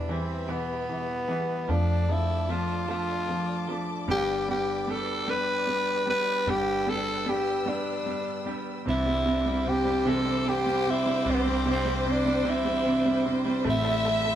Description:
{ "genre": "six-eight pop ballad", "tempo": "50 BPM (dotted quarters)", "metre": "6/8", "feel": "straight", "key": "C major", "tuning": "A4 = 440 Hz", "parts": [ { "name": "growling tenor saxophone", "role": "melody", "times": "0.0-14.4 s", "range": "B3 to B4", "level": "-28 LUFS", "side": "equal", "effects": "none" }, { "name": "clear baby grand piano", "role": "accompaniment", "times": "0.0-14.4 s", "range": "C3 to A3", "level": "-29 LUFS", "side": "equal", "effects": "none" }, { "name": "warm studio string section", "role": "sustained chords", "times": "0.0-14.4 s", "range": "G4 to E6", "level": "-38 LUFS", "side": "left 2 dB", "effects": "none" }, { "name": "direct-recorded clean electric guitar", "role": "arpeggios", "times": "0.0-14.4 s", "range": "E2 to G4", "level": "-37 LUFS", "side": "right 5 dB", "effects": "none" }, { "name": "vintage muted fingered electric bass", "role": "bass", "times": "0.0-14.4 s", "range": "G1 to F2", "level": "-32 LUFS", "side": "equal", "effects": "none" }, { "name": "warm studio violin section", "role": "second line", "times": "8.9-14.4 s", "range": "C5 to E5", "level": "-33 LUFS", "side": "equal", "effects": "none" } ], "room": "wet studio reverb, RT60 0.6 s", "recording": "band playing live in one room", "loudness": "-24 LUFS", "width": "side -10 dB against mid", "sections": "0.0-8.9 A section; 8.9-14.4 B section", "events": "break 7.7-8.9", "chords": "0.0 Em; 1.7 Dm/F; 4.1 G; 8.9 Cadd9; 13.7 Am7" }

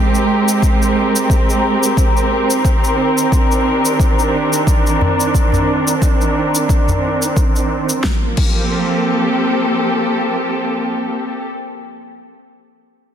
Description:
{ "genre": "organic downtempo", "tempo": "89 BPM", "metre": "4/4", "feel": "swing 56% on 16ths", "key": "G minor", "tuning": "A4 = 442 Hz", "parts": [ { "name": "muted studio string section", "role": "sustained chords", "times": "0.0-11.5 s", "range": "Eb3 to Bb4", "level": "-15 LUFS", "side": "right 1 dB", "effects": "sidechain pumping, low-pass filter" }, { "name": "deep house drum kit", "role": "drums", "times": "0.1-8.6 s", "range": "crash cymbal, shaker, snare drum", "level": "-23 LUFS", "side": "left 1 dB", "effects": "studio reverb, soft clipping on snare" }, { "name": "electronic kick drum", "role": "drums", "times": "0.6-8.6 s", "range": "none", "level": "-15 LUFS", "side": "equal", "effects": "studio reverb" }, { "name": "udu", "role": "percussion", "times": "5.0-7.0 s", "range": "none", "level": "-20 LUFS", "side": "left 1 dB", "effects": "none" } ], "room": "moderate lush hall reverb, RT60 2.6 s", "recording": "dense, heavily limited modern master", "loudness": "-13 LUFS", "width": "side -9 dB against mid", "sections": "0.0-8.0 A section; 8.0-10.7 B section", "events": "none", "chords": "0.0 Abmaj9; 2.6 Cm9; 8.0 Gm11" }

